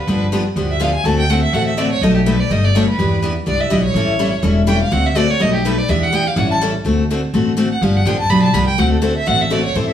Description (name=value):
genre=acoustic string swing (jazz manouche)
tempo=248 BPM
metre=4/4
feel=swing 55% on 8ths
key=D mixolydian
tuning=A4 = 440 Hz
part: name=rich violin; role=melody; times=0.0-9.9 s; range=G4 to B5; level=-19 LUFS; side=right 2 dB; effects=none
part: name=picked steel-string acoustic guitar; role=accompaniment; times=0.1-9.9 s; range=B2 to A4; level=-18 LUFS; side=left 3 dB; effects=none
part: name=upright bass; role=bass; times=0.1-9.9 s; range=E1 to E2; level=-17 LUFS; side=equal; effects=none
room=wet studio reverb, RT60 0.9 s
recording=band playing live in one room, small room ambience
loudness=-14 LUFS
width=side -10 dB against mid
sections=0.0-6.9 A section; 6.9-9.9 A section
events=violin solo 0.0-9.9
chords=0.0 G7; 1.0 D7; 2.0 Baug7; 3.0 Em7; 4.0 A7; 4.9 D7; 5.4 Baug7; 5.9 Em7; 6.4 A7; 6.9 D7; 7.8 G7; 8.8 D7